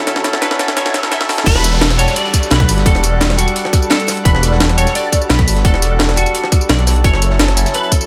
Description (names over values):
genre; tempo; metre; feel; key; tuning
liquid drum and bass; 172 BPM; 4/4; straight; unclear; A4 = 440 Hz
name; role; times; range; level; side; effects
clean electric guitar; melody; 0.0-8.1 s; F#4 to E5; -23 LUFS; equal; ensemble chorus, dub echo
barky tine electric piano; accompaniment; 0.0-8.1 s; F#3 to A4; -23 LUFS; equal; phaser
airy breathy pad; sustained chords; 0.0-8.1 s; E3 to A5; -29 LUFS; equal; none
riser and downlifter; sound effects; 0.5-4.3 s; none; -28 LUFS; equal; none
breakbeat sampler-style drum kit; drums; 0.1-8.1 s; crash cymbal, hi-hat, snare drum, tambourine; -19 LUFS; equal; studio reverb
dark detuned saw bass; bass; 1.5-7.6 s; E1 to B1; -17 LUFS; equal; none
crunchy breakbeat drum kit; drums; 1.5-8.0 s; hi-hat, snare drum; -28 LUFS; equal; none
electronic kick drum; drums; 1.5-8.0 s; none; -15 LUFS; equal; overdrive, studio reverb
room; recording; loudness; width
little or no reverb; high-pass filter; -14 LUFS; mono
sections
0.0-1.5 A section; 1.5-8.1 B section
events
build-up 0.0-1.5; drum fill 0.0-1.5; drop 1.5-8.1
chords
0.0 F#m7; 1.5 Em11; 7.0 F#m7